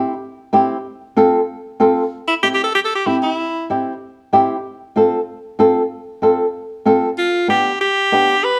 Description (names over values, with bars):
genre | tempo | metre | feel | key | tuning
latin | 190 BPM | 4/4 | straight | C major | A4 = 441 Hz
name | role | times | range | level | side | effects
flamenco guitar | accompaniment | 0.0-8.3 s | B3 to A4 | -18 LUFS | equal | none
bright alto saxophone | melody | 2.3-3.7, 7.2-8.6 s | E4 to B4 | -18 LUFS | equal | none
room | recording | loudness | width
moderate stone room reverb, RT60 1.1 s | band playing live in one room | -17 LUFS | mono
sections
0.0-2.1 A section; 2.1-8.6 B section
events
none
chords
0.0 C; 0.9 F; 2.1 C; 4.6 F; 7.2 G7